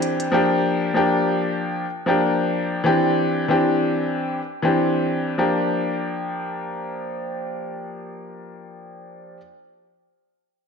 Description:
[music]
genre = hip hop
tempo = 95 BPM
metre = 4/4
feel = swing 58% on 16ths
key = G dorian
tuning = A4 = 441 Hz
[part]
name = warm upright piano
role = accompaniment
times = 0.0-9.4 s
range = E3 to G4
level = -20 LUFS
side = left 1 dB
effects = cassette tape, high-pass filter, low-pass filter
[sound]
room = wet lush hall reverb, RT60 1.8 s, studio ambience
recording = dreamy mix soaked in reverb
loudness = -19 LUFS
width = side -5 dB against mid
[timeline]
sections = 0.0-5.4 A section; 5.4-7.9 B section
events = none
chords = 0.3 Gm7; 2.9 Cadd9; 5.4 Gm7

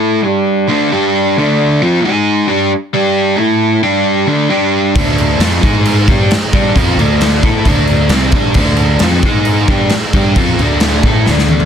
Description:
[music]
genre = quiet-loud alternative rock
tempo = 133 BPM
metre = 4/4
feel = straight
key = unclear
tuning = A4 = 440 Hz
[part]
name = crunchy overdriven guitar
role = riff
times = 0.0-11.7 s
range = C3 to A4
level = -12 LUFS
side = equal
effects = none
[part]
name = fuzz fingered electric bass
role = bass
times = 5.0-11.7 s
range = C2 to A2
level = -16 LUFS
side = equal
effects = overdrive
[part]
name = raw garage drum kit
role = drums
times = 5.0-11.7 s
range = crash cymbal, kick drum, snare drum, toms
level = -13 LUFS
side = equal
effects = none
[sound]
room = little or no reverb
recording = dense, heavily limited modern master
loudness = -10 LUFS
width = side -8 dB against mid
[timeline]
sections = 0.0-11.7 A section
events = drum fill 11.3-11.7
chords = 0.2 G5; 0.7 D5; 0.9 G5; 1.4 D5; 2.0 G#5; 2.5 G5; 3.4 A5; 3.8 G5; 4.3 D5; 4.5 G5; 5.0 D5; 5.6 G#5; 6.1 D5; 9.2 G#5; 9.7 D5

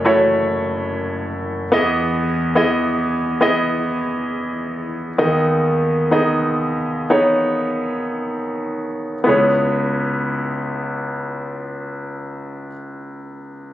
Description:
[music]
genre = pop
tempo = 52-72 BPM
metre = 4/4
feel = straight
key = C# minor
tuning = A4 = 441 Hz
[part]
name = bright concert grand piano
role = solo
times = 0.0-13.7 s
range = F#1 to E5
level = -18 LUFS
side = equal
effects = none
[sound]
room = light reverb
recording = recorded on a phone in the room, club reverb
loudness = -17 LUFS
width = side -13 dB against mid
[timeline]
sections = 0.0-9.3 A section; 9.3-13.7 B section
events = slowing down 1.7-9.3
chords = 0.0 F#m7; 1.7 Emaj7; 5.2 G#m/D#; 9.3 C#m7

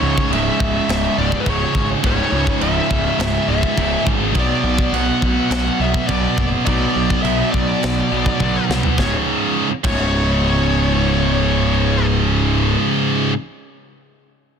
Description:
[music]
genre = heavy metal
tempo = 104 BPM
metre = 4/4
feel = straight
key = C# phrygian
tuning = A4 = 439 Hz
[part]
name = high-gain lead guitar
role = melody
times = 0.0-12.1 s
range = B4 to F#5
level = -24 LUFS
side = left 4 dB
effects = distortion, digital delay
[part]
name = heavy high-gain guitar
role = riff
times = 0.0-13.3 s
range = C#2 to B3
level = -22 LUFS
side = left 13 dB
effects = distortion
[part]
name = heavy high-gain guitar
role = riff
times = 0.0-13.3 s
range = C#2 to B3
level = -20 LUFS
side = right 12 dB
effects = distortion
[part]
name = fuzz picked electric bass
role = bass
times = 0.0-12.8 s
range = C#1 to C#2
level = -21 LUFS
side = equal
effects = overdrive
[part]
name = tight metal drum kit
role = drums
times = 0.2-10.0 s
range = china cymbal, crash cymbal, kick drum, snare drum, toms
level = -22 LUFS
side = equal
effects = soft clipping on kick
[sound]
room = studio reverb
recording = dense, heavily limited modern master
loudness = -15 LUFS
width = side -7 dB against mid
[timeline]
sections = 0.0-9.0 A section; 9.0-11.3 B section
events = drum fill 8.4-9.0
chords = 0.0 C#5; 4.3 Bm; 9.0 C#5

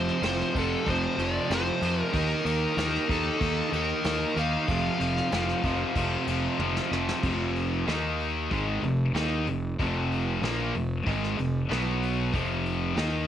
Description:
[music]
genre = hard rock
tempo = 94 BPM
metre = 4/4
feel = straight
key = unclear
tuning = A4 = 440 Hz
[part]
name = dark smooth lead guitar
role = melody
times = 0.0-6.6 s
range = A4 to F5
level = -31 LUFS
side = equal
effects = overdrive, cassette tape
[part]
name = cranked stack guitar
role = riff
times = 0.0-13.3 s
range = F2 to Eb4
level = -34 LUFS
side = equal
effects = overdrive, cassette tape
[part]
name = overdriven semi-hollow guitar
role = riff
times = 0.0-13.3 s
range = F2 to Eb4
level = -33 LUFS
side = right 9 dB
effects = cassette tape
[part]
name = tight distorted guitar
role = riff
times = 0.0-13.3 s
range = F2 to Eb4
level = -31 LUFS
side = left 8 dB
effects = distortion, cassette tape
[part]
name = fuzz fingered electric bass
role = bass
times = 0.0-13.3 s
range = F1 to F2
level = -30 LUFS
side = equal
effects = overdrive
[part]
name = soft brush drum kit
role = drums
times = 0.1-13.1 s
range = crash cymbal, hi-hat, kick drum, snare drum, toms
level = -35 LUFS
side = equal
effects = cassette tape
[sound]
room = little or no reverb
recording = home recording on cassette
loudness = -25 LUFS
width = side -10 dB against mid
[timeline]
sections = 0.0-7.2 A section; 7.2-13.3 B section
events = drum fill 6.6-7.2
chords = 0.0 F5; 2.1 Eb5; 4.7 F5; 7.9 Eb5; 8.5 F5; 11.7 B5; 12.3 F5

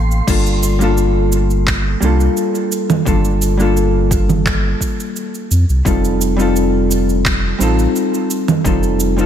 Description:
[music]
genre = sunset chillout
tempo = 86 BPM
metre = 4/4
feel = straight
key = G minor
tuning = A4 = 441 Hz
[part]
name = vintage hollow-body jazz guitar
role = accompaniment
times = 0.0-9.3 s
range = G3 to A4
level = -16 LUFS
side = left 1 dB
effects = auto-pan, tape echo
[part]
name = warm sub bass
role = bass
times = 0.0-9.3 s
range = F1 to F2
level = -16 LUFS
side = equal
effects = none
[part]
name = smooth R&B drum kit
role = drums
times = 0.1-9.3 s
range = cabasa, congas, crash cymbal, handclaps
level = -20 LUFS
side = right 5 dB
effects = none
[part]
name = electronic kick drum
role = drums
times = 0.3-8.8 s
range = none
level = -19 LUFS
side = equal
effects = none
[sound]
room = moderate plate reverb, RT60 3.5 s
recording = dreamy mix soaked in reverb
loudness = -13 LUFS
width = side -9 dB against mid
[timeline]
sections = 0.3-9.3 A section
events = none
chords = 0.0 Gm9; 5.5 F7

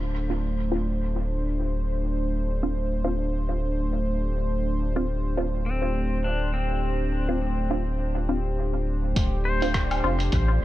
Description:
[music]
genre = ambient dub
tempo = 103 BPM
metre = 4/4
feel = swing 57% on 16ths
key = D minor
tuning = A4 = 441 Hz
[part]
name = warm analog pad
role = sustained chords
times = 0.0-10.6 s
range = A3 to C5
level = -30 LUFS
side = equal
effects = chorus
[part]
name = warm sub bass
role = bass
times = 0.0-10.6 s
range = D1 to A1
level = -26 LUFS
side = equal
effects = none
[part]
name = filtered dub chord stab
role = stabs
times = 0.3-10.2 s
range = C4 to F4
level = -32 LUFS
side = equal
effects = phaser, dub echo
[part]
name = pedal steel guitar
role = arpeggios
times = 5.7-10.6 s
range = C4 to C5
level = -32 LUFS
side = left 4 dB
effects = dub echo
[part]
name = electronic kick drum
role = drums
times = 9.2-10.5 s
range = none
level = -26 LUFS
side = equal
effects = none
[part]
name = lo-fi sampler-style drum kit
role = drums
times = 9.2-10.5 s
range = hi-hat, rim click, woodblock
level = -33 LUFS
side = equal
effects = dub echo
[sound]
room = light reverb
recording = none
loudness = -24 LUFS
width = side -15 dB against mid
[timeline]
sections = 0.0-9.2 A section; 9.2-10.6 B section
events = none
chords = 0.0 Dm7

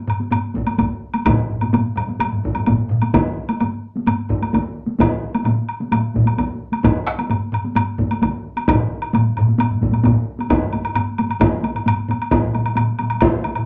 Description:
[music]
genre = japanese traditional, taiko drum ensemble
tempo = 130 BPM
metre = 4/4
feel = straight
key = none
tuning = none
[part]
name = taiko ensemble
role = percussion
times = 0.1-12.2 s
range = none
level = -26 LUFS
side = equal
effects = none
[part]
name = woodblock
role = percussion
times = 0.1-13.7 s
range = none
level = -27 LUFS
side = equal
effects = none
[part]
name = taiko ensemble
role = percussion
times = 0.2-13.6 s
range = none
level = -24 LUFS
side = equal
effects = none
[part]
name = solo taiko drums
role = percussion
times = 0.6-13.3 s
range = none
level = -23 LUFS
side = equal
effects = none
[part]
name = taiko ensemble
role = percussion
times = 1.3-13.7 s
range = none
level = -23 LUFS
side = equal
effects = none
[sound]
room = wet club reverb, RT60 0.6 s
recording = none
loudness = -19 LUFS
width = mono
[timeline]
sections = 0.0-10.5 A section; 10.5-13.7 B section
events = speeding up 0.0-13.7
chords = none

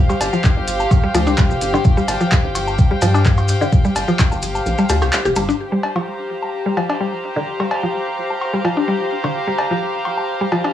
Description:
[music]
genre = minimal techno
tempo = 128 BPM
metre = 4/4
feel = straight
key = G minor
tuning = A4 = 439 Hz
[part]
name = rubbery square bass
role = bass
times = 0.0-5.5 s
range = F1 to G2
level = -21 LUFS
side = equal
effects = sidechain pumping
[part]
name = warm studio string section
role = texture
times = 0.0-10.7 s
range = G4 to Bb5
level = -22 LUFS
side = equal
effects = sidechain pumping, cassette tape
[part]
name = mallet-like synth pluck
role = riff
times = 0.1-10.7 s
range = D3 to G4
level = -21 LUFS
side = left 1 dB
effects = chorus, phaser, vintage 12-bit sampler grit, sidechain pumping, cassette tape, tape echo
[part]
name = cowbell and woodblock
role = percussion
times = 0.1-10.7 s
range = none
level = -26 LUFS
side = left 2 dB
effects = overdrive, cassette tape, analog delay
[part]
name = maracas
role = percussion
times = 0.1-5.6 s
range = none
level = -31 LUFS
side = left 3 dB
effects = none
[part]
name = minimal click drum kit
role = drums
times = 0.2-10.6 s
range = handclaps, hi-hat, ride cymbal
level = -23 LUFS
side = equal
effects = low-pass filter on hats, cassette tape, low-pass filter on cymbals, low-pass filter on snare, low-pass filter on room
[part]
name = electronic kick drum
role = drums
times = 0.4-4.3 s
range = none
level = -14 LUFS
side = equal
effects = cassette tape
[sound]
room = light reverb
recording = home recording on cassette, studio ambience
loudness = -15 LUFS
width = side -11 dB against mid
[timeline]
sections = 0.0-5.6 A section; 5.6-10.7 B section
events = drop 0.0-5.6; kick drops out 4.7-5.6; band accent 5.1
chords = 0.0 N.C.; 5.6 Gm

